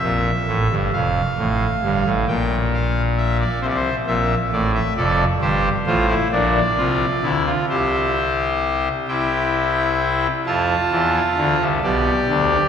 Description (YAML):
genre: classical, baroque-style 3-part fugue for pipe organ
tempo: 44 BPM (dotted quarters)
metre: 6/8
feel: straight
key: F major from 5.0 s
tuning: A4 = 441 Hz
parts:
  - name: pipe organ, trumpet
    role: solo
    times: 0.0-12.7 s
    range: F1 to A5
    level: -17 LUFS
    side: equal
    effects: none
room: wet church reverb, RT60 3.0 s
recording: recorded in a church or concert hall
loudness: -17 LUFS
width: side -8 dB against mid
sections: 0.0-10.5 A section; 10.5-12.7 B section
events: none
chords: 0.0 C7 (rootless); 0.9 F; 2.3 Bb; 3.6 C7; 5.0 F; 6.3 Bb; 7.7 C5; 9.1 C; 10.5 F; 11.8 G/B